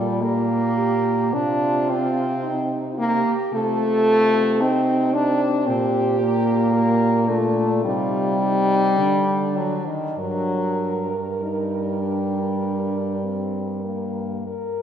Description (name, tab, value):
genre	classical, lyrical piece for horn quartet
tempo	48-58 BPM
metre	4/4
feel	rubato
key	G minor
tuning	A4 = 439 Hz
part	mellow French horn	melody	0.0-14.8 s	Bb3 to Bb4	-29 LUFS	left 2 dB	none
part	clear French horn	second line	0.0-14.5 s	D4 to Bb4	-28 LUFS	right 4 dB	none
part	mellow French horn	accompaniment	0.0-14.4 s	Eb3 to D4	-21 LUFS	left 1 dB	none
part	dark French horn	bass	0.0-14.7 s	G2 to D3	-26 LUFS	right 2 dB	none
room	wet scoring stage reverb, RT60 1.8 s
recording	heard from further back in the room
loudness	-19 LUFS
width	side -9 dB against mid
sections	0.0-14.8 A section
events	none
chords	0.0 Gm/Bb; 1.3 Cm; 5.7 Gm/Bb; 7.8 Cm; 9.0 Dadd11; 10.2 Gm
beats	0.22 | 1.33 2.44 3.53 4.62 | 5.67 6.74 7.84 8.98 | 10.17 11.40 12.63 13.85